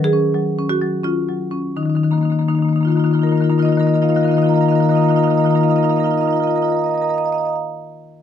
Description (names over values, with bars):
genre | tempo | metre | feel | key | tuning
classical, contemporary piece for solo marimba | 82 BPM | 3/4 | straight | Eb minor | A4 = 440 Hz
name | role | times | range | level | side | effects
marimba with medium hard mallets | solo | 0.0-7.6 s | Eb3 to Eb6 | -15 LUFS | left 2 dB | none
room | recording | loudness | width
little or no reverb | close, detailed microphones | -15 LUFS | side -9 dB against mid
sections
0.0-1.8 A section; 1.8-6.1 B section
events
slowing down 0.0-1.8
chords
0.0 Ebm7; 1.8 Ebsus2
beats
0.37 1.03 | 1.76 2.49 3.22 | 3.95 4.68 5.41